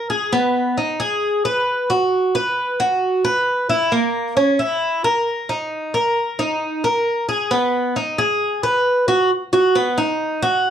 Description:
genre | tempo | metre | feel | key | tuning
latin | 134 BPM | 4/4 | straight | G# minor | A4 = 441 Hz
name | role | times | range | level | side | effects
Cuban tres | solo | 0.0-10.7 s | A#3 to B4 | -17 LUFS | equal | none
room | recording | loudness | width
moderate large studio reverb, RT60 0.9 s | dark, warm production | -17 LUFS | side -9 dB against mid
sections
0.0-9.3 A section; 9.3-10.7 B section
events
none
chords
none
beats
| 0.32 0.77 1.22 1.67 | 2.12 2.57 3.02 3.47 | 3.92 4.37 4.82 5.27 | 5.72 6.17 6.61 7.06 | 7.51 7.96 8.41 8.86 | 9.31 9.76 10.20 10.65

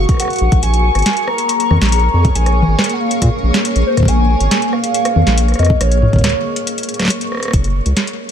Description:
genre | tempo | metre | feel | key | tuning
IDM | 139 BPM | 4/4 | straight | unclear | A4 = 440 Hz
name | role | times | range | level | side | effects
granular cloud pad | sustained chords | 0.0-7.5 s | Bb3 to Db5 | -21 LUFS | equal | built-in reverb, vintage 12-bit sampler grit, sidechain pumping
round analog bass | bass | 0.0-7.9 s | Gb1 to Bb2 | -13 LUFS | equal | tube saturation
bubbling stepped-filter texture | texture | 0.0-7.5 s | Db6 | -26 LUFS | right 3 dB | chorus, built-in reverb, sidechain pumping
booming analog drum machine | drums | 0.1-8.3 s | congas, hi-hat, rim click, snare drum | -19 LUFS | equal | none
electronic kick drum | drums | 0.1-7.6 s | none | -16 LUFS | equal | none
warbly nostalgic lead | melody | 0.2-7.1 s | C5 to Bb5 | -20 LUFS | left 1 dB | lush chorus, dub echo
room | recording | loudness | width
little or no reverb | none | -12 LUFS | side -8 dB against mid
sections
0.0-7.5 A section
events
break 6.7-7.5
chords
0.0 Gbadd9; 0.6 Bbm7; 7.5 Gb5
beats
0.20 | 0.63 1.06 1.49 1.92 | 2.35 2.79 3.22 3.65 | 4.08 4.51 4.94 5.38 | 5.81 6.24 6.67 7.10 | 7.53 7.97

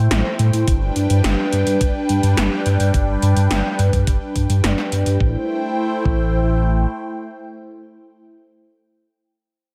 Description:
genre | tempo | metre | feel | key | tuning
synthwave | 106 BPM | 4/4 | straight | A minor | A4 = 441 Hz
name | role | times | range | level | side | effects
phased analog pad | sustained chords | 0.0-8.2 s | G3 to G5 | -24 LUFS | equal | phaser, chorus, sidechain pumping
chorused synth bass | bass | 0.0-6.9 s | G1 to A2 | -20 LUFS | equal | sidechain pumping
80s electronic pad drums | drums | 0.1-5.2 s | hi-hat, snare drum | -26 LUFS | equal | none
electronic kick drum | drums | 0.7-6.2 s | none | -22 LUFS | equal | none
room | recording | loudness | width
moderate lush hall reverb, RT60 1.6 s, digital ambience | dreamy mix soaked in reverb | -18 LUFS | mono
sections
0.0-5.2 A section; 5.2-7.5 B section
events
filter sweep on analog synth bass 0.0-5.2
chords
0.0 Am7; 0.7 G; 5.2 Am7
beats
0.11 | 0.68 1.24 1.81 2.37 | 2.94 3.51 4.07 4.64 | 5.20 5.77 6.34 6.90

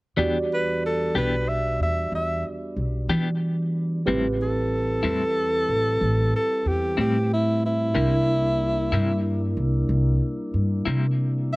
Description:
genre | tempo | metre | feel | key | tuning
blues | 62 BPM (dotted quarters) | 12/8 | straight | E minor | A4 = 441 Hz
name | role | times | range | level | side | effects
barky tine electric piano | accompaniment | 0.2-11.6 s | C4 to D5 | -30 LUFS | right 2 dB | overdrive, slapback echo
clean electric guitar | accompaniment | 0.2-11.1 s | A2 to G4 | -27 LUFS | left 3 dB | tremolo
mellow tonewheel organ | sustained chords | 0.2-11.6 s | C#3 to F4 | -33 LUFS | left 1 dB | slow rotary speaker
upright bass | bass | 0.2-11.6 s | A1 to E3 | -24 LUFS | equal | none
mellow tenor saxophone | melody | 0.5-11.6 s | E4 to E5 | -24 LUFS | equal | slapback echo
room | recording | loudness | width
little or no reverb | recorded outdoors, with no room sound | -21 LUFS | side -22 dB against mid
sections
0.2-11.6 A section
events
none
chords
0.2 Em7; 4.1 Am7; 8.0 C7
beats
| 0.18 1.15 2.12 3.10 | 4.07 5.04 6.01 6.98 | 7.95 8.92 9.89 10.86

